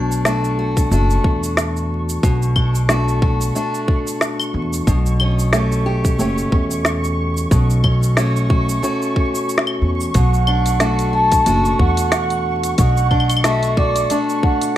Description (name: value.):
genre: folktronica.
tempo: 91 BPM.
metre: 4/4.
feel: swing 56% on 16ths.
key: B minor.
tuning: A4 = 437 Hz.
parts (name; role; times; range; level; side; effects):
picked steel-string acoustic guitar; arpeggios; 0.0-14.8 s; B2 to G4; -21 LUFS; left 1 dB; plate reverb, ping-pong delay.
upright bass; bass; 0.0-14.0 s; F#1 to E2; -18 LUFS; equal; none.
flickering grainy texture; texture; 0.0-14.8 s; C#6; -29 LUFS; right 2 dB; built-in reverb, plate reverb.
organic electronic drum kit; drums; 0.1-14.7 s; cabasa, claves, hi-hat, snare drum; -21 LUFS; equal; studio reverb.
electronic kick drum; drums; 0.8-14.6 s; none; -17 LUFS; equal; studio reverb.
baroque flute; melody; 10.2-14.8 s; D5 to A5; -19 LUFS; right 2 dB; none.
room: light reverb.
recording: vinyl crackle.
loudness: -15 LUFS.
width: side -12 dB against mid.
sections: 0.0-14.8 A section.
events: none.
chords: 0.0 Bm7; 4.9 A7/B; 7.5 F#m/B; 10.1 Bm7.